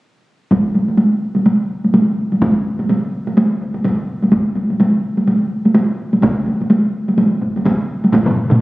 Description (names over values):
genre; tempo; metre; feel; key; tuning
japanese traditional, taiko drum ensemble; 126 BPM; 4/4; swing 60% on 16ths; none; none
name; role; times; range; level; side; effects
taiko ensemble; percussion; 0.5-8.6 s; none; -14 LUFS; equal; none
taiko ensemble; percussion; 0.5-8.3 s; none; -23 LUFS; equal; none
taiko ensemble; percussion; 8.3-8.6 s; none; -17 LUFS; left 1 dB; none
taiko ensemble; percussion; 8.3-8.6 s; none; -15 LUFS; equal; none
room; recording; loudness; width
wet recital hall reverb, RT60 1.4 s; recorded on a phone in the room, studio reverb; -13 LUFS; side -19 dB against mid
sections
0.5-8.1 A section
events
none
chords
none